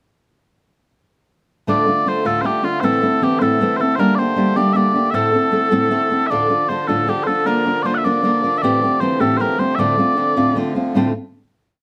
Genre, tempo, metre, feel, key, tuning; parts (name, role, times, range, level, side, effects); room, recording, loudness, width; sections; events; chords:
celtic folk, Celtic jig; 104 BPM (dotted quarters); 6/8; straight; D minor; A4 = 440 Hz
mellow small bagpipes; melody; 1.7-10.6 s; F4 to F#5; -20 LUFS; equal
fingerpicked steel-string acoustic guitar; accompaniment; 1.7-11.1 s; D2 to Bb4; -20 LUFS; equal
accordion; drone; 1.7-11.0 s; D3 to A3; -31 LUFS; equal
light reverb; -17 LUFS; mono
1.7-10.9 A section; 10.9-11.8 final chord
1.7 Dm; 2.8 Am; 4.0 Gm; 5.2 Am; 6.3 Dm; 7.5 Bb; 8.6 Am7; 9.8 Dm7